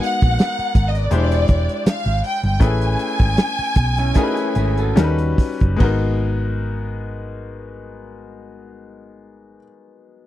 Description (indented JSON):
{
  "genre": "lush 1970s-style soul",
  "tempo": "70-83 BPM",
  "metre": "4/4",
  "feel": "swing 54% on 16ths",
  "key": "unclear",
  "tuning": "A4 = 438 Hz",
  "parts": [
    { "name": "rich studio violin section", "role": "melody", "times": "0.0-5.0 s", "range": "D5 to G#5", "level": "-23 LUFS", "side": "equal", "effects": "none" },
    { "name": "bright grand piano", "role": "accompaniment", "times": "0.0-10.3 s", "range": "G3 to B#4", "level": "-25 LUFS", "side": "left 5 dB", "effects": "none" },
    { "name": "warm soul drum kit", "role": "drums", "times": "0.0-6.0 s", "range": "crash cymbal, hi-hat, kick drum, snare drum", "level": "-15 LUFS", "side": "equal", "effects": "none" },
    { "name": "hollow-body short-scale fingered electric bass", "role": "bass", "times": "0.2-9.6 s", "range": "E1 to D#2", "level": "-20 LUFS", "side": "equal", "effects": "none" },
    { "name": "electric guitar through a small old amp", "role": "riff", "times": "4.0-5.2 s", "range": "C#4 to B4", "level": "-26 LUFS", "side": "right 6 dB", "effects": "none" }
  ],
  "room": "little or no reverb",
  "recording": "dry, close 1970s-style studio recording",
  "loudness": "-16 LUFS",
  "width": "side -14 dB against mid",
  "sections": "0.0-5.8 A section; 5.8-9.2 B section",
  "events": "slowing down 0.0-5.8",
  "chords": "0.0 G#m9; 1.1 E7alt; 2.6 Amaj9; 5.0 D#7alt; 5.8 G#m9",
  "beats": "0.38 1.11 1.85 | 2.60 3.37 4.16 4.97 | 5.81 6.66 7.51 8.36"
}